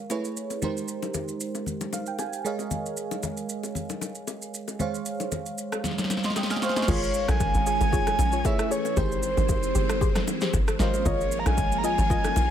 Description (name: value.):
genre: amapiano.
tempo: 115 BPM.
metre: 4/4.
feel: swing 55% on 16ths.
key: unclear.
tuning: A4 = 440 Hz.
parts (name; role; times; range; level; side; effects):
bell-like FM electric piano; accompaniment; 0.0-12.5 s; Ab3 to F6; -32 LUFS; right 4 dB; chorus.
deep house drum kit; drums; 0.1-12.5 s; crash cymbal, kick drum, rim click, shaker, snare drum; -28 LUFS; equal; overdrive.
bongos and congas; percussion; 0.1-12.5 s; none; -35 LUFS; left 7 dB; none.
breathy flute-like synth lead; melody; 6.6-12.5 s; C5 to Bb5; -28 LUFS; right 1 dB; chorus, ping-pong delay.
string machine, violins; sustained chords; 6.9-12.5 s; Eb3 to Db4; -32 LUFS; equal; ensemble chorus, sidechain pumping.
soft round pluck; stabs; 6.9-12.5 s; F4 to Eb5; -33 LUFS; left 6 dB; chorus, ping-pong delay.
tight log drum bass; bass; 6.9-12.5 s; G1 to Bb1; -26 LUFS; equal; none.
room: little or no reverb.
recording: none.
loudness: -24 LUFS.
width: side -10 dB against mid.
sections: 0.0-6.9 A section; 6.9-12.5 B section.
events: FM electric piano fill 1.7-2.7; drum fill 5.8-6.9; drop 6.9-12.5.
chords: 0.1 Amaj7; 0.6 Abmaj7; 2.4 Db69/Ab; 4.8 Dbmaj9#11/Ab; 6.9 Eb9sus4/Ab; 8.4 Amaj7; 9.0 Abmaj7; 10.8 Db69/Ab.